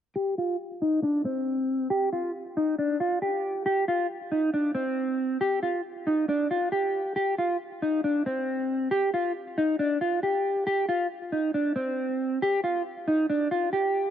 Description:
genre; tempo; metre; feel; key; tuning
hip hop; 137 BPM; 4/4; half-time; unclear; A4 = 440 Hz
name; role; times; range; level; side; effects
mellow electric guitar; solo; 0.2-14.1 s; C4 to G4; -25 LUFS; equal; wide subtle chorus, low-pass filter
room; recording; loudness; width
moderate lush hall reverb, RT60 2.4 s; worn, warbling old tape, cassette tape, warbly pitch drift; -25 LUFS; side -9 dB against mid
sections
0.2-7.2 A section; 7.2-14.1 B section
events
filter sweep on clean electric guitar 0.2-7.2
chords
none

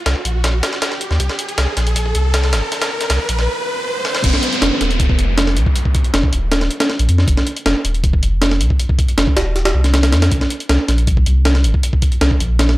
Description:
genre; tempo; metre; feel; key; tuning
drum and bass, jungle; 158 BPM; 4/4; straight; unclear; A4 = 440 Hz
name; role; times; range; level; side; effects
riser and downlifter; sound effects; 0.0-7.3 s; none; -22 LUFS; right 1 dB; none
saturated sub bass; bass; 0.1-12.8 s; Eb1 to F2; -15 LUFS; equal; none
breakbeat sampler-style drum kit; drums; 0.1-12.8 s; crash cymbal, hi-hat, kick drum, snare drum; -16 LUFS; equal; high-pass filter on hats, high-pass filter on kick, high-pass filter on snare, high-pass filter on cymbals
room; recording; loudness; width
little or no reverb; dry, gritty hardware recording; -14 LUFS; side -17 dB against mid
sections
0.0-4.2 A section; 4.2-12.8 B section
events
build-up 0.0-4.2; riser 0.0-4.2; drum fill 4.0; drop 4.2-12.8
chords
none

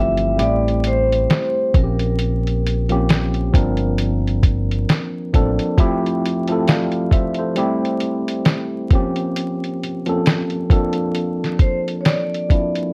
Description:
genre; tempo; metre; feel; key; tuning
lo-fi hip hop; 67 BPM; 4/4; swing 57% on 16ths; unclear; A4 = 440 Hz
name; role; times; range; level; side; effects
vibraphone with medium hard mallets; melody; 0.0-5.3, 11.6-12.9 s; Bb4 to E5; -25 LUFS; equal; low-pass filter, plate reverb
mellow tine electric piano; accompaniment; 0.0-12.9 s; E3 to F5; -23 LUFS; equal; cassette tape, low-pass filter
deep dub fingered electric bass; bass; 0.0-5.6 s; G1 to Bb1; -23 LUFS; equal; none
lo-fi sampler-style drum kit; drums; 0.2-12.9 s; hi-hat, kick drum, snare drum; -19 LUFS; equal; none
room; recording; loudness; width
light reverb; worn, warbling old tape, cassette tape, vinyl crackle, warbly pitch drift; -19 LUFS; mono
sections
0.0-12.9 A section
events
none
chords
0.4 Am7; 1.7 Bbm6; 3.5 Gm11; 5.8 Fmaj9; 7.6 Am7; 8.9 Bbm6; 10.7 Bbmaj9#11/F

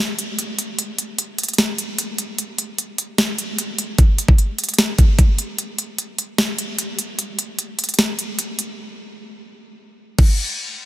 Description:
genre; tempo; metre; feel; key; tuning
hip hop; 150 BPM; 4/4; half-time; none; none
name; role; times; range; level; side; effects
trap drum kit; drums; 0.2-10.3 s; crash cymbal, hi-hat, kick drum, snare drum; -18 LUFS; equal; overdrive
room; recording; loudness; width
light reverb; dense, heavily limited modern master; -18 LUFS; side -15 dB against mid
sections
0.0-10.4 A section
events
break 0.0-4.0; drums muted 8.8-10.4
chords
none

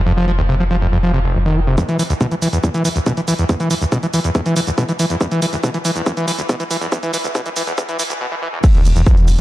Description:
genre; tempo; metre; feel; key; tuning
driving peak-time techno; 140 BPM; 4/4; straight; unclear; A4 = 442 Hz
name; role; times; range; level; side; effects
dark detuned saw bass; bass; 0.0-1.8, 8.8-9.4 s; E1 to F1; -17 LUFS; equal; sidechain pumping
screaming distorted acid line; riff; 0.1-9.3 s; F1 to F3; -18 LUFS; equal; distortion, chorus, sidechain pumping, tape echo
electronic kick drum; drums; 1.8-9.2 s; none; -15 LUFS; equal; high-pass filter on kick
punchy analog drum machine; drums; 1.8-9.4 s; crash cymbal, hi-hat, ride cymbal, shaker; -26 LUFS; right 4 dB; none
room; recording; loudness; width
light reverb; dark, warm production, high-pass filter; -15 LUFS; side -16 dB against mid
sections
0.0-1.8 A section; 1.8-8.6 B section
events
build-up 1.8-8.6; filter sweep on acid bass 1.8-8.6; filter sweep 1.8-8.6; break 8.2-8.6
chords
0.0 F5; 1.8 E5; 8.6 N.C.

